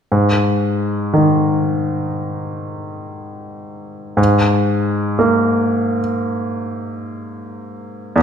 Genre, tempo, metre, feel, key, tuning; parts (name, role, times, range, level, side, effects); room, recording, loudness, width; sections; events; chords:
cinematic; 59 BPM; 4/4; rubato; A4 = 435 Hz
bright baby grand piano; accompaniment; 0.1-8.2 s; E2 to A#3; -16 LUFS; equal
wet scoring stage reverb, RT60 1.9 s; minimal, uncompressed stereo recording; -15 LUFS; side -7 dB against mid
0.1-8.2 A section
0.1 G#sus2